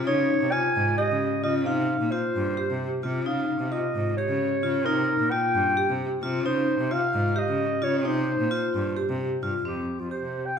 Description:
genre	contemporary instrumental, chamber music in an uneven meter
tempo	263 BPM (eighths)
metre	7/8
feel	straight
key	unclear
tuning	A4 = 439 Hz
part	vibraphone with hard mallets	arpeggios	0.0-10.5 s	C4 to G4	-28 LUFS	left 2 dB	none
part	clear cello	bass	0.0-10.4 s	F2 to Db3	-29 LUFS	equal	none
part	growling clarinet	melody	0.1-10.6 s	F4 to Ab5	-27 LUFS	right 1 dB	none
room	moderate recital hall reverb, RT60 1.4 s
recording	minimal, uncompressed stereo recording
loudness	-23 LUFS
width	side -7 dB against mid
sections	0.0-9.7 A section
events	none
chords	0.1 Db; 1.7 Csus4; 3.3 Db; 4.9 Cm7; 6.5 Dbmaj7; 8.1 Csus4; 9.7 Fsus2

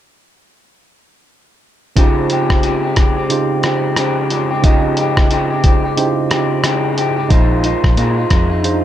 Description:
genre	indie pop, bedroom pop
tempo	90 BPM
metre	4/4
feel	swing 60% on 16ths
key	unclear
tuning	A4 = 440 Hz
part	electric guitar through a small old amp	accompaniment	2.0-8.8 s	Bb2 to G4	-18 LUFS	left 3 dB	lush chorus, vibrato effect
part	tine electric piano	accompaniment	2.0-8.8 s	Db3 to Eb5	-19 LUFS	right 5 dB	overdrive, cassette tape
part	lo-fi sampler-style drum kit	drums	2.0-8.8 s	hi-hat, kick drum, rim click	-15 LUFS	equal	none
part	vintage muted fingered electric bass	bass	7.3-8.8 s	Bb1 to Bb2	-17 LUFS	equal	none
room	light reverb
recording	none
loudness	-12 LUFS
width	side -11 dB against mid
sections	2.0-8.8 A section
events	none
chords	2.0 Dbmaj9#11; 7.3 Bb7sus4

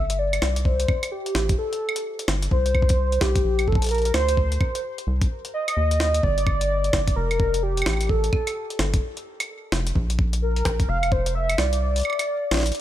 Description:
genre	IDM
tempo	129 BPM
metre	4/4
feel	swing 62% on 16ths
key	unclear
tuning	A4 = 437 Hz
part	warm velvety synth lead	melody	0.0-12.8 s	G4 to F5	-25 LUFS	equal	chorus, ping-pong delay
part	rubbery square bass	bass	0.0-12.7 s	F1 to Eb2	-23 LUFS	equal	none
part	jungle sampler-style drum kit	drums	0.1-12.8 s	hi-hat, snare drum, woodblock	-28 LUFS	equal	small room ambience
part	electronic kick drum	drums	0.7-11.2 s	none	-23 LUFS	equal	small room ambience
room	little or no reverb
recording	none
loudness	-20 LUFS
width	side -12 dB against mid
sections	0.0-12.8 A section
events	kick drops out 11.8-12.8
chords	0.0 Am; 2.5 Cm; 6.2 Gmadd9; 10.0 Bbadd9

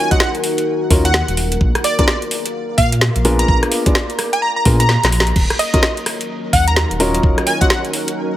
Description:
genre	UK garage, two-step garage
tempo	128 BPM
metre	4/4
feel	swing 62% on 16ths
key	Eb minor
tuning	A4 = 441 Hz
part	plucky unison lead	melody	0.0-7.8 s	D5 to Bb5	-20 LUFS	equal	analog chorus, vintage 12-bit sampler grit, digital delay
part	dark concert grand piano	stabs	0.0-7.7 s	Cb4 to Eb5	-21 LUFS	left 1 dB	digital delay
part	deep dark ambient pad	texture	0.0-8.4 s	Eb4 to D6	-25 LUFS	left 1 dB	chorus, built-in reverb, sidechain pumping
part	electronic kick drum	drums	0.1-7.7 s	none	-16 LUFS	equal	none
part	garage drum kit	drums	0.1-8.2 s	crash cymbal, hi-hat, rim click, snare drum	-19 LUFS	equal	none
part	dark detuned saw bass	bass	0.9-7.3 s	Eb1 to Bb2	-17 LUFS	equal	none
part	soft string machine	sustained chords	6.1-8.4 s	Gb3 to Bb4	-26 LUFS	right 1 dB	ensemble chorus, sidechain pumping
room	little or no reverb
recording	heavily compressed radio sound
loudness	-13 LUFS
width	side -13 dB against mid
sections	0.0-8.4 A section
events	drum fill 4.9-5.4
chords	0.0 Ebm9; 1.6 Bb7b9; 5.4 Ebm9

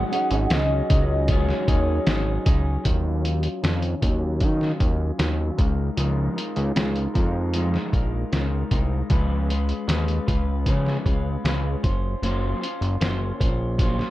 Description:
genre	indie pop, bedroom pop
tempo	77 BPM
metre	4/4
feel	straight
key	Db major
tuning	A4 = 441 Hz
part	hollow clarinet-like synth lead	melody	0.0-2.5 s	Db5 to Gb5	-27 LUFS	equal	analog chorus, tape echo
part	dark upright piano	accompaniment	0.0-2.9 s	Db4 to Eb5	-32 LUFS	right 5 dB	none
part	electric guitar through a small old amp	accompaniment	0.0-14.1 s	Ab2 to C5	-28 LUFS	left 2 dB	wide subtle chorus, warbly pitch drift, low-pass filter
part	fat analog bass	bass	0.0-14.0 s	Gb1 to Eb3	-24 LUFS	equal	none
part	lo-fi sampler-style drum kit	drums	0.1-14.1 s	hi-hat, kick drum, snare drum	-24 LUFS	equal	none
room	light reverb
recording	dark, warm production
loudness	-20 LUFS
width	side -16 dB against mid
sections	0.0-2.9 A section; 2.9-14.1 B section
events	filter sweep on clean electric guitar 2.9-14.1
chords	0.0 Ab7sus4; 2.9 Ebm9; 5.6 Db69; 9.1 Db7; 11.8 Gbmaj7#11

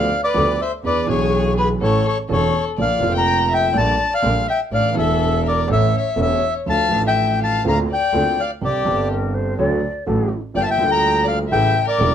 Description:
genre	tango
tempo	124 BPM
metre	4/4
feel	rubato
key	unclear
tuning	A4 = 437 Hz
part	bandoneon	melody	0.0-12.1 s	B4 to Bb5	-19 LUFS	left 2 dB	plate reverb
part	dark violin	second line	0.0-12.1 s	G4 to G5	-24 LUFS	left 4 dB	none
part	warm concert grand piano	accompaniment	0.0-12.1 s	E1 to A4	-23 LUFS	right 3 dB	none
part	clear double bass	bass	0.0-12.1 s	E1 to E2	-22 LUFS	right 1 dB	none
part	mellow hollow silver concert flute	second line	9.1-10.4 s	A4 to D5	-25 LUFS	left 2 dB	none
room	moderate studio ambience, RT60 0.5 s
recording	none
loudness	-16 LUFS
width	side -9 dB against mid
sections	0.0-12.1 A section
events	none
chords	0.0 G7; 0.8 E7; 1.8 A; 2.8 Bb; 3.7 Gmadd9/Bb; 4.7 Asus4; 5.7 A; 6.7 Dm; 7.6 Bbadd9/D; 8.6 Csus2; 9.6 D; 10.6 Gm7; 11.5 A7

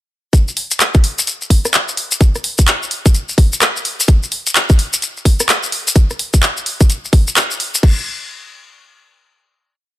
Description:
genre	UK garage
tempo	128 BPM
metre	4/4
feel	swing 63% on 16ths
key	none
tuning	none
part	electronic kick drum	drums	0.3-7.9 s	none	-10 LUFS	equal	studio ambience
part	garage drum kit	drums	0.3-8.0 s	crash cymbal, handclaps, hi-hat, rim click	-16 LUFS	equal	studio ambience
part	maracas	percussion	0.3-7.8 s	none	-18 LUFS	left 3 dB	none
room	little or no reverb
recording	none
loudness	-12 LUFS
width	side -15 dB against mid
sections	0.3-7.8 drop; 7.8-10.0 final hit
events	drop 0.3-7.8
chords	none

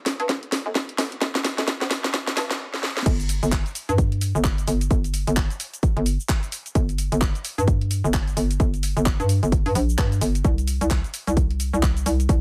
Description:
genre	bass house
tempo	130 BPM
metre	4/4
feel	swing 59% on 16ths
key	G minor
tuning	A4 = 439 Hz
part	house drum kit	drums	0.1-12.4 s	crash cymbal, handclaps, hi-hat, shaker, snare drum	-30 LUFS	equal	none
part	hollow knocking FM bass	bass	0.2-12.4 s	G1 to G2	-24 LUFS	equal	overdrive, sidechain pumping, high-pass filter
part	electronic kick drum	drums	0.3-12.4 s	none	-24 LUFS	equal	high-pass filter on kick, high-pass filter on room
room	little or no reverb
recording	high-pass filter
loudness	-23 LUFS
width	mono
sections	0.0-3.1 A section; 3.1-12.4 B section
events	build-up 0.0-3.1; drum fill 0.0-2.6, 2.7-3.1; drop 3.1-12.4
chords	none

